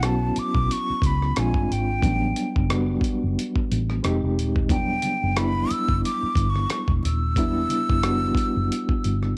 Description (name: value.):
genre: R&B, neo-soul.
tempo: 90 BPM.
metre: 4/4.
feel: swing 56% on 16ths.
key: E dorian.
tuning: A4 = 440 Hz.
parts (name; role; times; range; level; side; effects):
breathy jazz flute; melody; 0.0-9.3 s; G5 to E6; -30 LUFS; equal; cassette tape.
reed electric piano; accompaniment; 0.0-9.4 s; F#3 to G4; -28 LUFS; equal; fast tremolo, cassette tape.
vintage muted fingered electric bass; bass; 0.0-9.3 s; Eb1 to C#2; -27 LUFS; equal; none.
dusty soul sampler-style drum kit; drums; 0.0-9.3 s; hi-hat, kick drum, rim click; -28 LUFS; equal; cassette tape.
congas; percussion; 4.7-9.4 s; none; -43 LUFS; equal; none.
room: digital ambience.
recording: home recording on cassette.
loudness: -23 LUFS.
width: mono.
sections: 0.0-9.4 A section.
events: none.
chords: 0.0 Dmaj13; 1.4 A#9; 2.0 A13sus4; 4.0 Fm9; 4.7 Em9.